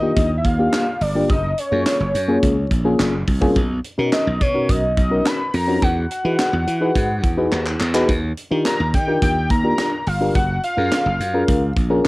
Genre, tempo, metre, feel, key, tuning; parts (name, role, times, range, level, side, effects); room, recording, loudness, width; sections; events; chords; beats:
early-eighties boogie funk; 106 BPM; 4/4; straight; A4 = 445 Hz
fat analog lead; melody; 0.0-11.7 s; Db5 to B5; -23 LUFS; equal; chorus, cassette tape
mellow FM electric piano; accompaniment; 0.0-12.1 s; Bb3 to B4; -20 LUFS; left 1 dB; chorus, cassette tape
glassy slap bass; bass; 0.0-12.1 s; Gb1 to E3; -21 LUFS; equal
tight funk drum kit; drums; 0.2-12.1 s; handclaps, hi-hat, kick drum, snare drum; -22 LUFS; equal; cassette tape
light reverb; home recording on cassette; -16 LUFS; side -21 dB against mid
0.0-12.1 A section
drum fill 7.5-8.1
0.0 Ebmaj9; 1.3 Gbmaj9; 3.6 Bmaj9; 5.8 Emaj9; 8.1 Ebmaj9; 10.4 Gbmaj9
0.16 0.73 | 1.30 1.86 2.43 2.99 | 3.56 4.13 4.69 5.26 | 5.83 6.39 6.96 7.52 | 8.09 8.65 9.22 9.79 | 10.35 10.92 11.48 12.05